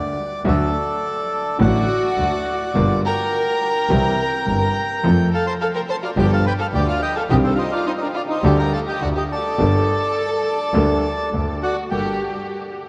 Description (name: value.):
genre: tango.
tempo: 105 BPM.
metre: 4/4.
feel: rubato.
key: G minor.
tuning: A4 = 440 Hz.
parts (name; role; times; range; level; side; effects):
bandoneon; melody; 0.0-12.2 s; A4 to C6; -26 LUFS; equal; tape echo.
clear concert grand piano; accompaniment; 0.0-12.2 s; G1 to A4; -25 LUFS; equal; none.
clear double bass; bass; 0.0-12.2 s; G1 to F2; -24 LUFS; equal; none.
warm studio violin section; second line; 1.6-12.2 s; C4 to C5; -26 LUFS; equal; tape echo.
room: wet huge ambient reverb, RT60 5.1 s.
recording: dreamy mix soaked in reverb, cassette tape.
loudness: -20 LUFS.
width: mono.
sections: 0.0-11.9 A section.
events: none.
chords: 0.5 D; 2.8 Gm7; 3.9 C; 5.0 F; 6.2 G7; 7.3 Cmadd9; 8.4 Dsus4; 9.0 D5; 9.6 Gmadd9; 11.3 D; 11.9 Gmadd9.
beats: | 0.45 1.02 1.60 2.18 | 2.75 3.33 3.90 4.47 | 5.03 5.60 6.17 6.73 | 7.30 7.87 8.44 9.01 | 9.58 10.16 10.74 11.32 | 11.91.